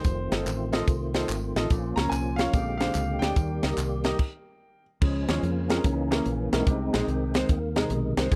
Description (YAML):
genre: uptempo gospel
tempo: 145 BPM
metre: 4/4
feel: swing 66% on 8ths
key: Ab major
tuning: A4 = 440 Hz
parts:
  - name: clear baby grand piano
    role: melody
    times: 0.0-4.8 s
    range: C5 to Bb5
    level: -36 LUFS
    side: equal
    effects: none
  - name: percussive tonewheel organ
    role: sustained chords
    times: 0.0-8.4 s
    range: C3 to G4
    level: -33 LUFS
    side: equal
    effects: slow rotary speaker, overdrive, chorus vibrato
  - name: fingered electric bass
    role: bass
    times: 0.0-8.4 s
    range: F1 to F2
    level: -32 LUFS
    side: equal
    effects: none
  - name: crisp fusion drum kit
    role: drums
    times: 0.0-8.4 s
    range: crash cymbal, hi-hat, kick drum, snare drum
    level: -28 LUFS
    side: equal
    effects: none
  - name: tambourine and handclaps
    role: percussion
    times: 0.0-4.1 s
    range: none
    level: -44 LUFS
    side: equal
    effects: none
  - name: clear baby grand piano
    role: accompaniment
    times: 0.3-8.4 s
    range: Bb2 to Eb5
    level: -34 LUFS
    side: equal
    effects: none
room: small room reverb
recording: dry, close 1970s-style studio recording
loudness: -26 LUFS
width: mono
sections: 0.0-5.0 A section; 5.0-8.4 B section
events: stop 4.2-5.0; tonewheel organ solo 5.0-8.4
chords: 0.0 F7; 1.7 Bbm; 2.5 Bb13; 3.4 Eb; 5.0 Db; 5.8 Dbm6; 6.7 Ab